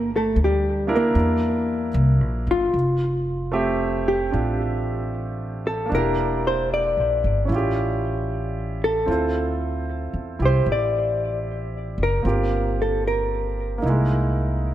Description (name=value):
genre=jazz ballad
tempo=76 BPM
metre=4/4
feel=swing 67% on 8ths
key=F major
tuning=A4 = 443 Hz
part: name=hollow-body jazz guitar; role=melody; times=0.0-14.7 s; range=G3 to D5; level=-24 LUFS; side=left 1 dB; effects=wide subtle chorus, tape echo
part: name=upright bass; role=bass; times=0.0-14.7 s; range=E1 to E2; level=-24 LUFS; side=equal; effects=none
part: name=clear baby grand piano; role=accompaniment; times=0.9-14.7 s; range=G#3 to E5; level=-26 LUFS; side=right 3 dB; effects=none
room=light reverb, small room ambience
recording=none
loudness=-20 LUFS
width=side -12 dB against mid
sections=0.0-2.7 A section; 2.7-14.7 B section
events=hollow-body jazz guitar solo 0.0-2.7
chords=0.0 Gm; 1.1 C9; 2.7 Fmaj9; 5.9 Em7b5; 7.5 A7b13; 9.1 Dm9; 12.2 Gm7; 13.8 C7alt